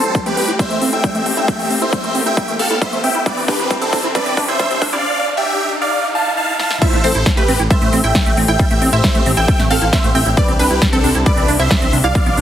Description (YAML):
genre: uplifting trance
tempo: 135 BPM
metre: 4/4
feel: straight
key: A minor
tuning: A4 = 441 Hz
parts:
  - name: big supersaw lead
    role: melody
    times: 0.0-12.4 s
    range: C4 to A5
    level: -18 LUFS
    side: right 1 dB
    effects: phaser, sidechain pumping, digital delay
  - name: dark studio string section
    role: sustained chords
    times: 0.0-12.4 s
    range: C3 to G4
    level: -24 LUFS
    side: left 2 dB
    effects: sidechain pumping
  - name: liquid acid bass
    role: arpeggios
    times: 0.0-12.4 s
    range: G3 to E4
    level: -22 LUFS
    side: right 1 dB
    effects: chorus, sidechain pumping, digital delay
  - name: fat analog bass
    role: bass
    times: 0.0-12.4 s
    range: A1 to C2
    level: -21 LUFS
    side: equal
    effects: sidechain pumping, high-pass filter
  - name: big-room dance drum kit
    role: drums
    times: 0.0-12.4 s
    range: crash cymbal, hi-hat, snare drum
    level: -22 LUFS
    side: left 1 dB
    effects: overdrive
  - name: riser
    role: sound effects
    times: 0.0-6.8 s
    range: none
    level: -26 LUFS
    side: right 1 dB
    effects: none
  - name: electronic kick drum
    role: drums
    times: 0.1-12.2 s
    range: none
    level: -17 LUFS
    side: equal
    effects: overdrive
  - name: analog pluck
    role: second line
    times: 6.8-12.4 s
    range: A4 to G5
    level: -23 LUFS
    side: right 1 dB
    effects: chorus, sidechain pumping
room: moderate lush hall reverb, RT60 1.7 s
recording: heavily compressed radio sound, high-pass filter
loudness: -13 LUFS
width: side -10 dB against mid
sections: 0.0-6.8 A section; 6.8-12.4 B section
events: build-up 0.0-6.8; drum fill 0.0-5.0, 6.6; riser 0.0-6.8; filter sweep on acid bass 0.0-6.8; drop 6.8-12.4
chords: 0.0 Am7; 3.3 Cadd9; 5.0 G5; 6.8 Am7; 10.4 Cadd9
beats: 0.15 0.59 1.04 | 1.48 1.93 2.37 2.82 | 3.26 3.71 4.15 4.59 | 5.04 5.48 5.93 6.37 | 6.82 7.26 7.71 8.15 | 8.59 9.04 9.48 9.93 | 10.37 10.82 11.26 11.71 | 12.15